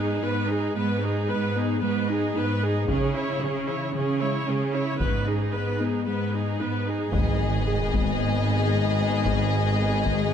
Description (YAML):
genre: cinematic, hybrid orchestral and electronic film score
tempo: 113 BPM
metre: 4/4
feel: straight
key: G# minor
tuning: A4 = 436 Hz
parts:
  - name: bright studio viola section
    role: accompaniment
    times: 0.0-10.3 s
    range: B3 to C#5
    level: -29 LUFS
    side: equal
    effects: none
  - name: harp-like synth pluck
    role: arpeggios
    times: 0.0-10.2 s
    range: C#3 to G#4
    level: -31 LUFS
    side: left 2 dB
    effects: chorus, ping-pong delay
  - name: warm symphonic cello section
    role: bass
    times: 0.0-10.3 s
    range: G#2 to C#3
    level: -27 LUFS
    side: right 1 dB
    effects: none
  - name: taiko ensemble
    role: drums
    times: 2.9-10.3 s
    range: none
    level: -30 LUFS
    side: left 1 dB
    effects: none
  - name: warm symphonic violin section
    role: melody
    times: 7.1-10.3 s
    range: D#5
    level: -31 LUFS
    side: left 3 dB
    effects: none
  - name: rich symphonic violin section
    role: second line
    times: 7.1-10.3 s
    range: G#4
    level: -29 LUFS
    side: left 4 dB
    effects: none
  - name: mellow tuba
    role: bass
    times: 7.1-10.3 s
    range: G#1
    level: -29 LUFS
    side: right 1 dB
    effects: none
  - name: rich symphonic double bass section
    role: bass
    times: 7.1-10.3 s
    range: G#1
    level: -30 LUFS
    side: right 1 dB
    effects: none
  - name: sub drop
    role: sound effects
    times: 7.1-9.3 s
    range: none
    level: -31 LUFS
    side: left 1 dB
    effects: none
room: moderate scoring stage reverb, RT60 2.0 s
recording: none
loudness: -22 LUFS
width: side -8 dB against mid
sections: 0.0-7.1 A section; 7.1-10.3 B section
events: impact 7.1-9.3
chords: 0.0 G#m; 2.9 C#m; 5.0 G#m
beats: 0.23 | 0.76 1.29 1.82 2.35 | 2.89 3.42 3.95 4.48 | 5.01 5.54 6.07 6.60 | 7.13 7.67 8.20 8.73 | 9.26 9.79 10.32